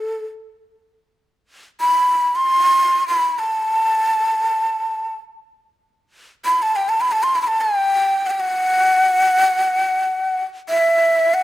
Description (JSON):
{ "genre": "Turkish makam ensemble", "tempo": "free time", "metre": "none", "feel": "none", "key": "A makam nikriz", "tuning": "A4 = 440 Hz", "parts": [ { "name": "breathy ney", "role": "solo", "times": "0.0-11.4 s", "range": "A4 to C6+24c", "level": "-15 LUFS", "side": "equal", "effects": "none" } ], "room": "light reverb", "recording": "close, detailed microphones", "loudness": "-15 LUFS", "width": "side -15 dB against mid", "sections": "0.0-1.0 A section; 1.0-11.4 A section", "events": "none", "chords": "none" }